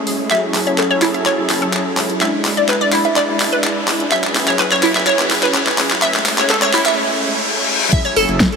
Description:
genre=progressive house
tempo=126 BPM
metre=4/4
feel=straight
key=F# minor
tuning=A4 = 439 Hz
part: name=filtered supersaw swell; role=sustained chords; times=0.0-8.6 s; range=F#3 to B4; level=-21 LUFS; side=right 1 dB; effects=sidechain pumping
part: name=riser and reverse cymbal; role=sound effects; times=0.2-7.9 s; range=none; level=-25 LUFS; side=left 3 dB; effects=none
part: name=dark detuned saw bass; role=bass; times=0.1-8.5 s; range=F#1 to C#2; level=-28 LUFS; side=left 1 dB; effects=none
part: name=pop drum kit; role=drums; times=0.1-8.6 s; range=crash cymbal, handclaps, hi-hat, snare drum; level=-18 LUFS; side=left 1 dB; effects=overdrive, sidechain pumping on hats, sidechain pumping on cymbals
part: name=glassy wavetable pluck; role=arpeggios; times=0.3-8.2 s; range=E4 to E5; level=-17 LUFS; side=equal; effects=chorus, phaser, sidechain pumping, tape echo
part: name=electronic kick drum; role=drums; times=7.9-8.5 s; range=none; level=-17 LUFS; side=equal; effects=overdrive
room=wet huge ambient reverb, RT60 8.1 s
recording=high-pass filter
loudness=-13 LUFS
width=side -5 dB against mid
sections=0.0-7.9 A section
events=build-up 0.0-7.9; drum fill 0.0-7.0; filter sweep on supersaw synth 0.0-7.9; filter sweep 0.0-7.9; break 7.0-7.9; reverse cymbal 7.0-7.9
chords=0.3 F#m7; 2.2 E7/F#; 4.1 C#m7/F#; 6.0 Amaj7/F#

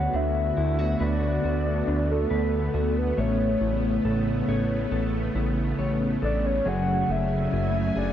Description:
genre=dream pop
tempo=69 BPM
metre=4/4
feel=straight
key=unclear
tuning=A4 = 440 Hz
part: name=soft octave-layered synth lead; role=melody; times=0.0-8.1 s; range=A4 to F#5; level=-29 LUFS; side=equal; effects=chorus, phaser, digital delay
part: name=string machine, violas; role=sustained chords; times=0.0-8.1 s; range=C#3 to G#5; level=-28 LUFS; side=equal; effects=ensemble chorus
part: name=mellow electric guitar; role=arpeggios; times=0.0-8.1 s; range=D3 to C#5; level=-30 LUFS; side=left 2 dB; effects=lush chorus, digital delay
part: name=fat analog bass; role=bass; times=0.0-8.1 s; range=F#1 to D2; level=-27 LUFS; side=equal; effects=none
room=moderate huge ambient reverb, RT60 8.1 s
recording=dark, warm production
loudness=-22 LUFS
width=side -10 dB against mid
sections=0.0-8.1 A section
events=none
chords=0.0 D6; 3.2 Aadd9; 6.7 F#madd9

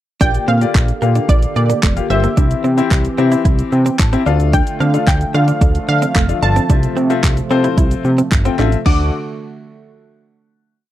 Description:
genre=dance-pop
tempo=111 BPM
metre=4/4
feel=straight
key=D minor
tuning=A4 = 440 Hz
part: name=analog pluck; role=melody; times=0.2-9.1 s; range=D5 to D6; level=-21 LUFS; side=right 2 dB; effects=chorus, slapback echo
part: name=clear grand piano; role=accompaniment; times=0.2-9.1 s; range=Bb3 to A5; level=-21 LUFS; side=left 11 dB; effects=sidechain pumping
part: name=warm analog pad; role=sustained chords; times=0.2-9.1 s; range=C3 to G4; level=-25 LUFS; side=right 3 dB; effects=chorus, sidechain pumping
part: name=direct-recorded clean electric guitar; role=riff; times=0.2-9.0 s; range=A3 to E4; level=-22 LUFS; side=right 4 dB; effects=wide subtle chorus
part: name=fat analog bass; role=bass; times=0.2-9.1 s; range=F1 to D3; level=-15 LUFS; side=equal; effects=sidechain pumping
part: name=deep house drum kit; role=drums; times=0.2-9.0 s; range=crash cymbal, handclaps, hi-hat, kick drum, shaker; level=-15 LUFS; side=equal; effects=none
room=little or no reverb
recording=dry, close 1970s-style studio recording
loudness=-12 LUFS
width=side -13 dB against mid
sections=0.2-8.9 chorus; 8.9-10.9 final chord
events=grand piano fill 3.5-4.5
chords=0.2 Bb6; 2.4 C; 4.3 Dm; 6.7 Fmaj7/C; 8.9 D

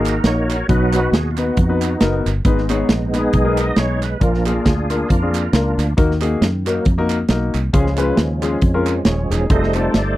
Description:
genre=uptempo gospel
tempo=136 BPM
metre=4/4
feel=swing 56% on 8ths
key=Eb minor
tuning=A4 = 439 Hz
part: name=warm grand piano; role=accompaniment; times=0.0-10.0 s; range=Ab2 to Db5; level=-21 LUFS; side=left 3 dB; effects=none
part: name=bright tonewheel organ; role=sustained chords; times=0.0-10.2 s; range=F3 to Eb5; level=-22 LUFS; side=right 2 dB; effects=slow rotary speaker, chorus vibrato
part: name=fingered electric bass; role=bass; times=0.0-10.2 s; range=Eb1 to Gb2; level=-20 LUFS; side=equal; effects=none
part: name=modern studio drum kit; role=drums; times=0.0-10.1 s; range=hi-hat, kick drum, snare drum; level=-17 LUFS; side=equal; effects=none
part: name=group handclap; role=percussion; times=0.1-9.8 s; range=none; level=-31 LUFS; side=right 10 dB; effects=none
room=light reverb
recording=dry, close 1970s-style studio recording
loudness=-15 LUFS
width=side -15 dB against mid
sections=0.0-10.2 A section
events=tonewheel organ solo 0.0-10.2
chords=0.0 Ebm; 0.7 B; 2.5 Abm; 4.2 Bb; 6.0 Ebm; 7.7 Db; 9.5 F7

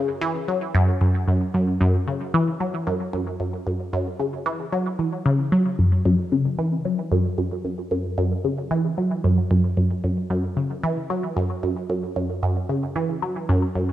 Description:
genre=ambient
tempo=113 BPM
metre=4/4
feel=straight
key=unclear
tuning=A4 = 440 Hz
part: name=resonant blip pluck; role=solo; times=0.0-13.9 s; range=F#2 to F#3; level=-20 LUFS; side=equal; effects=phaser, analog delay
room=light reverb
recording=cassette tape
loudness=-21 LUFS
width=side -13 dB against mid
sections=0.0-5.8 A section; 5.8-13.9 B section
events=none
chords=none

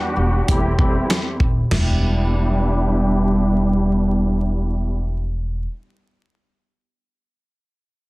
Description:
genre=hip hop, boom-bap hip-hop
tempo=97 BPM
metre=4/4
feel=swing 60% on 16ths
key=E minor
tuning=A4 = 440 Hz
part: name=muted studio string section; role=accompaniment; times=0.0-5.0 s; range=E2 to G4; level=-20 LUFS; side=equal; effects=cassette tape, high-pass filter, low-pass filter, plate reverb
part: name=upright bass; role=bass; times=0.2-5.6 s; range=D#1 to E1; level=-20 LUFS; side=equal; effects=none
part: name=dusty soul sampler-style drum kit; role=drums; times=0.5-1.9 s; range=crash cymbal, hi-hat, kick drum, snare drum, toms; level=-20 LUFS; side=equal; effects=none
room=light reverb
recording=dense, heavily limited modern master, vinyl crackle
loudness=-17 LUFS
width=side -22 dB against mid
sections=0.0-1.7 A section; 1.7-4.2 B section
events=filter sweep on string section 0.0-1.7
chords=0.5 Am7/E; 1.7 Em7

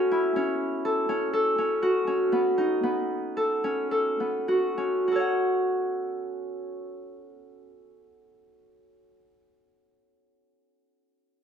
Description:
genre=contemporary instrumental, contemporary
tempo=99-124 BPM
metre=5/4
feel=straight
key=F# dorian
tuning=A4 = 440 Hz
part: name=Celtic harp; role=arpeggios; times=0.0-9.3 s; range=B3 to F#5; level=-24 LUFS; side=equal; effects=none
room=light reverb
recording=minimal, uncompressed stereo recording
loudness=-24 LUFS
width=side -8 dB against mid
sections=0.0-5.1 A section; 5.1-8.1 B section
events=slowing down 0.8-5.1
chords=0.0 F#m7; 5.1 F#m

